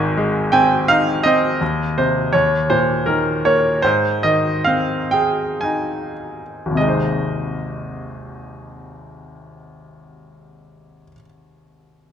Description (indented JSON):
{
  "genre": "classical, lyrical solo piano",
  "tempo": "48-84 BPM",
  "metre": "3/4",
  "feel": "rubato",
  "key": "Ab major",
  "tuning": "A4 = 440 Hz",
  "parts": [
    { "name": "bright grand piano", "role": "solo", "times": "0.0-12.1 s", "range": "Ab1 to Ab5", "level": "-16 LUFS", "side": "equal", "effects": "none" }
  ],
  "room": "moderate recital hall reverb, RT60 1.8 s",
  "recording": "dark, warm production",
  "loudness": "-16 LUFS",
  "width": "side -8 dB against mid",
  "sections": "0.0-1.6 A section; 1.6-6.8 B section; 6.8-12.1 C section",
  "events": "grand piano fill 0.2-1.6; slowing down 1.6-6.8",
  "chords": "0.0 Ab; 1.6 Cm/Eb; 2.3 Eb5; 3.8 Ab"
}